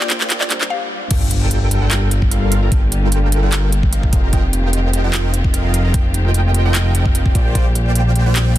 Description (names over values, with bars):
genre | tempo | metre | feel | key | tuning
future bass | 149 BPM | 4/4 | swing 53% on 16ths, half-time | unclear | A4 = 440 Hz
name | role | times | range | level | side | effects
mallet-like synth pluck | melody | 0.0-0.9 s | D5 to F5 | -28 LUFS | left 3 dB | chorus, sidechain pumping, ping-pong delay
felt-muted upright piano | accompaniment | 0.0-1.1 s | Bb2 to C5 | -35 LUFS | right 1 dB | sidechain pumping, digital delay
rich studio string section | sustained chords | 0.0-8.6 s | D3 to Bb4 | -29 LUFS | left 2 dB | sidechain pumping
big bright polysynth | riff | 0.0-8.5 s | F3 to Bb5 | -24 LUFS | right 2 dB | wide subtle chorus, sidechain pumping, digital delay
trap drum kit | drums | 0.0-8.6 s | crash cymbal, handclaps, hi-hat | -22 LUFS | right 1 dB | none
swell and impact | sound effects | 0.5-2.7 s | none | -26 LUFS | equal | none
fat analog bass | bass | 1.1-8.6 s | F1 to Bb1 | -16 LUFS | equal | sidechain pumping
electronic kick drum | drums | 1.1-7.6 s | none | -16 LUFS | equal | none
room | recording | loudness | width
little or no reverb | dense, heavily limited modern master, high-pass filter | -14 LUFS | side -14 dB against mid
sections
0.0-1.1 A section; 1.1-8.6 B section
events
build-up 0.0-1.1; drum fill 0.0-0.7; swell 0.5-1.1; break 0.7-1.1; drop 1.1-8.6; impact 1.1-2.7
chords
0.0 Bb6; 1.1 Gm9; 4.1 F9sus4; 7.3 Bb6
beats
0.30 0.70 | 1.11 1.51 1.91 2.32 | 2.72 3.12 3.52 3.93 | 4.33 4.73 5.13 5.54 | 5.94 6.34 6.75 7.15 | 7.55 7.95 8.36